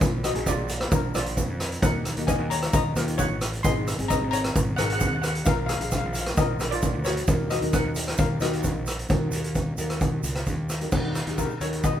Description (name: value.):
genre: calypso.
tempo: 132 BPM.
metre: 4/4.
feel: straight.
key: Eb minor.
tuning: A4 = 440 Hz.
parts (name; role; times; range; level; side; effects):
steel pan; melody; 0.0-12.0 s; D4 to C6; -29 LUFS; left 3 dB; none.
nylon-string guitar; accompaniment; 0.0-12.0 s; Bb3 to Bb4; -34 LUFS; left 1 dB; none.
fuzz fingered electric bass; bass; 0.0-12.0 s; Ab1 to F2; -30 LUFS; equal; overdrive.
street-band drum kit; drums; 0.0-11.9 s; crash cymbal, hi-hat, kick drum, rim click; -25 LUFS; equal; none.
tube shaker; percussion; 0.0-11.9 s; none; -39 LUFS; right 6 dB; none.
room: moderate large studio reverb, RT60 1.2 s.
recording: band playing live in one room.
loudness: -23 LUFS.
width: side -10 dB against mid.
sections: 0.0-9.1 A section; 9.1-10.9 B section; 10.9-12.0 C section.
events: none.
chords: 0.0 Bb; 1.8 Ebm; 3.6 Abadd9; 5.5 Bb; 7.3 Ebm; 10.9 Ebm7.